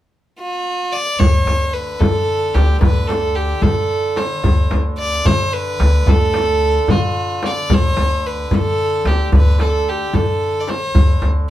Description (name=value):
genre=Arabic maqam ensemble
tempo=74 BPM (dotted quarters)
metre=6/8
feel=straight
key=D maqam rast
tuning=A4 = 439 Hz
part: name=clear violin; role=melody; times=0.4-11.2 s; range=F4+46c to D5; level=-19 LUFS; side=right 1 dB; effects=none
part: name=upright bass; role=bass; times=1.2-11.5 s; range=D2 to D3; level=-16 LUFS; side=equal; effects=none
part: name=warm duduk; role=drone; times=1.2-11.5 s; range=D3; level=-29 LUFS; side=right 3 dB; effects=none
part: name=darbuka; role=percussion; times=1.2-11.3 s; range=none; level=-21 LUFS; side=equal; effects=none
part: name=frame drum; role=percussion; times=1.2-11.3 s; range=none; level=-21 LUFS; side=left 2 dB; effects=none
room=wet studio reverb, RT60 0.5 s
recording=heard from further back in the room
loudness=-14 LUFS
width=side -13 dB against mid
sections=0.0-1.2 A section; 1.2-11.5 B section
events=none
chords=none